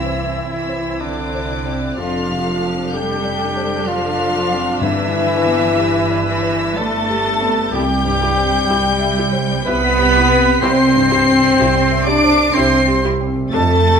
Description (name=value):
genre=cinematic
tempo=62 BPM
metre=3/4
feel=rubato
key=C major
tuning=A4 = 445 Hz
part: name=warm symphonic violin section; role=melody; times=0.0-14.0 s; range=D6 to D7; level=-23 LUFS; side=left 2 dB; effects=none
part: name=bright clarinet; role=second line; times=0.0-14.0 s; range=D4 to D5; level=-24 LUFS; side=left 1 dB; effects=none
part: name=mellow cor anglais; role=second line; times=0.0-14.0 s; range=D4 to D5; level=-25 LUFS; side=right 2 dB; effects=none
part: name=mellow hollow concert flute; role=second line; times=0.0-14.0 s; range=D5 to D6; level=-24 LUFS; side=left 1 dB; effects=none
part: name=warm symphonic violin section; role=second line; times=0.0-14.0 s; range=D5 to D6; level=-28 LUFS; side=left 1 dB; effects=none
part: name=felt-muted upright piano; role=accompaniment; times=0.0-14.0 s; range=C2 to E5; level=-24 LUFS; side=left 3 dB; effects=none
part: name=warm studio viola section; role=accompaniment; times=0.0-13.6 s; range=C4 to B4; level=-26 LUFS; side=right 1 dB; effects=none
part: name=mellow French horn section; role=sustained chords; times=0.0-14.0 s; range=D3 to D4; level=-20 LUFS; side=left 4 dB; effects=none
part: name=rich symphonic cello section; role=bass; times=0.0-14.0 s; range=D3 to D4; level=-24 LUFS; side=right 5 dB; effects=none
part: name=rich symphonic double bass section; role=bass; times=0.0-14.0 s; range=F1 to F2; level=-23 LUFS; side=right 5 dB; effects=none
part: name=timpani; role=percussion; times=0.0-6.2 s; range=G2 to C3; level=-28 LUFS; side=left 3 dB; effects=none
room=wet recital hall reverb, RT60 1.3 s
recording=none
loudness=-14 LUFS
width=side -6 dB against mid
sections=0.0-14.0 A section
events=none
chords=0.0 C; 2.0 F6; 4.8 G; 7.7 C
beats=0.04 1.02 | 1.99 2.94 3.88 | 4.82 5.78 6.77 | 7.73 8.68 9.66 | 10.62 11.59 12.55 | 13.53